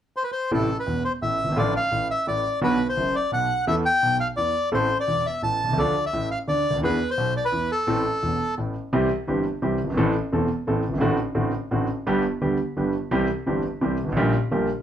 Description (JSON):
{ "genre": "tango", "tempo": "172 BPM", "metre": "3/4", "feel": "rubato", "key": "A minor, C major from 8.9 s", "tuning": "A4 = 438 Hz", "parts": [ { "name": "bandoneon", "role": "melody", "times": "0.2-8.5 s", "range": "A4 to A5", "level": "-23 LUFS", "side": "left 1 dB", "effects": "none" }, { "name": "warm concert grand piano", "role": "accompaniment", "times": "0.5-14.7 s", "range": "E1 to A4", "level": "-23 LUFS", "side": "equal", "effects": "none" } ], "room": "moderate studio ambience, RT60 0.4 s", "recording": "band playing live in one room", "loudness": "-21 LUFS", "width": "side -10 dB against mid", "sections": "0.5-8.9 A section; 8.9-14.8 B section", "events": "none", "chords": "0.0 N.C.; 0.5 Am; 1.6 Dm/A; 2.6 Bm; 3.7 Esus4; 4.4 N.C.; 4.7 Am; 5.8 Dm; 6.8 E7; 7.9 Am; 8.9 C; 10.0 Am; 11.0 D7/A; 12.1 G; 13.1 C; 14.2 Gm/Bb" }